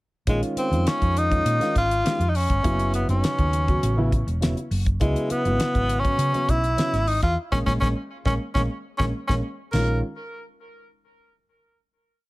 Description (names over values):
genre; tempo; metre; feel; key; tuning
electric jazz fusion; 102 BPM; 4/4; straight; unclear; A4 = 439 Hz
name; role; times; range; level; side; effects
clear tenor saxophone; melody; 0.3-10.0 s; Ab3 to Bb4; -25 LUFS; equal; none
dark baby grand piano; accompaniment; 0.3-10.0 s; Db3 to Ab4; -28 LUFS; equal; none
hollow-body short-scale fingered electric bass; bass; 0.3-10.0 s; Fb1 to Db3; -24 LUFS; equal; none
damped 70s drum kit; drums; 0.3-9.9 s; crash cymbal, hi-hat, kick drum, snare drum; -25 LUFS; equal; none
room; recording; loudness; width
light reverb; none; -20 LUFS; side -20 dB against mid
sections
0.3-9.7 A section; 9.7-12.1 final chord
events
band accent 7.4-9.7; drum fill 9.1-9.7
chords
0.3 Bbm7; 2.6 Gbm7; 5.0 Dbm7; 7.4 Bbm7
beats
| 0.27 0.86 1.45 2.05 | 2.64 3.23 3.82 4.42 | 5.01 5.60 6.19 6.78 | 7.37 7.96 8.55 9.14 | 9.73